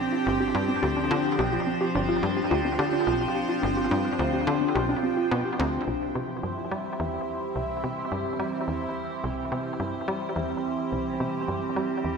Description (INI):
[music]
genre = ambient, sequencer-driven space music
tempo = 107 BPM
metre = 4/4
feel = straight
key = C major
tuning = A4 = 439 Hz
[part]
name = evolving wavetable pad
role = sustained chords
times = 0.0-12.2 s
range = E3 to C5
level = -28 LUFS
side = right 1 dB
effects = chorus, built-in reverb, phaser
[part]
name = warbly dusty pluck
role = arpeggios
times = 0.0-5.7 s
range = C4 to C5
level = -30 LUFS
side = left 2 dB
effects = chorus, auto-pan, tape echo
[part]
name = bubbling stepped-filter texture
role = texture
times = 0.0-12.2 s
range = E4 to G5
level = -34 LUFS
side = right 2 dB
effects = chorus, built-in reverb
[part]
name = tight sequencer bass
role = riff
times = 0.3-12.2 s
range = G1 to G3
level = -30 LUFS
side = left 1 dB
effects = analog chorus, tape echo
[sound]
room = wet echo chamber reverb, RT60 2.2 s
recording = echo-heavy mix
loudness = -24 LUFS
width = side -5 dB against mid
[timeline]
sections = 0.0-5.9 A section; 5.9-12.2 B section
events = filter sweep on analog synth bass 5.9-12.2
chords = 0.0 G7sus4; 5.9 C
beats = 0.27 0.83 | 1.39 1.95 2.51 3.07 | 3.63 4.19 4.75 5.31 | 5.87 6.43 6.99 7.55 | 8.12 8.68 9.24 9.80 | 10.36 10.92 11.48 12.04